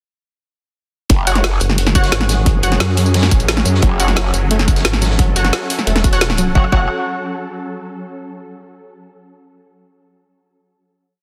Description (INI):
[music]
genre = dark technical drum and bass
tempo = 176 BPM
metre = 4/4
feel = straight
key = F# minor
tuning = A4 = 435 Hz
[part]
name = swarming drone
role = sustained chords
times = 2.2-6.7 s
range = F#3 to A4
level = -28 LUFS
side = equal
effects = built-in reverb, sidechain pumping
[part]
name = growl bass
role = bass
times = 1.1-1.6, 3.8-4.3, 6.6-6.9 s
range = F#1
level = -20 LUFS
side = equal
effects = chorus, tube saturation
[part]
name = crunchy breakbeat drum kit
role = drums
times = 1.1-6.5 s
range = hi-hat, snare drum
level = -30 LUFS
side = equal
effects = none
[part]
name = drum and bass drum kit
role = drums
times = 1.1-6.5 s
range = hi-hat, snare drum, tambourine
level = -21 LUFS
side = equal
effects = none
[part]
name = electronic kick drum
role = drums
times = 1.1-6.8 s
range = none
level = -16 LUFS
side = equal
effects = none
[part]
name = orchestra-hit-like synth stab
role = stabs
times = 1.3-6.8 s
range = F#4 to F#5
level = -25 LUFS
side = equal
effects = built-in reverb, dub echo
[part]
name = vowel-sweep wobble bass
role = bass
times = 1.6-6.5 s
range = E1 to F#2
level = -18 LUFS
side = equal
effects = chorus
[part]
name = analog pluck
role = arpeggios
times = 3.8-6.9 s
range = F#3 to F#4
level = -27 LUFS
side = equal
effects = chorus, phaser, vintage 12-bit sampler grit, sidechain pumping, dub echo
[sound]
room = light reverb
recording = dense, heavily limited modern master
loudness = -15 LUFS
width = mono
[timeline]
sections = 1.1-6.6 drop; 6.6-7.9 final chord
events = drop 1.1-6.6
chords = 1.1 F#m; 6.6 F#5